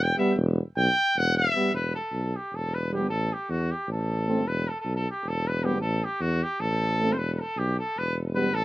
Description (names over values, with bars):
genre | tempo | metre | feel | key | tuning
balkan folk, Balkan brass band | 309 BPM (eighths) | 7/8 | straight | E minor | A4 = 442 Hz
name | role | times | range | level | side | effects
bright trumpet | melody | 0.0-8.6 s | F#4 to G5 | -27 LUFS | equal | none
warm tuba | bass | 0.0-8.6 s | E1 to E2 | -28 LUFS | equal | none
dark euphonium | accompaniment | 0.2-8.5 s | G3 to A3 | -29 LUFS | right 3 dB | none
warm euphonium | accompaniment | 0.2-8.5 s | B3 to C4 | -32 LUFS | left 3 dB | slapback echo
room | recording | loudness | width
little or no reverb | recorded outdoors, with no room sound | -24 LUFS | side -16 dB against mid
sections
0.0-1.7 A section; 1.7-8.6 B section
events
trumpet solo 0.0-1.7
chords
0.0 Em; 3.1 A5; 4.5 Em; 5.8 A5; 7.2 E5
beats
0.18 | 0.37 0.57 0.76 0.95 1.15 1.34 1.54 | 1.73 1.93 2.12 2.32 2.51 2.71 2.90 | 3.10 3.29 3.49 3.68 3.88 4.07 4.26 | 4.46 4.65 4.85 5.04 5.24 5.43 5.62 | 5.82 6.01 6.21 6.40 6.59 6.79 6.98 | 7.18 7.37 7.56 7.76 7.95 8.14 8.34 | 8.53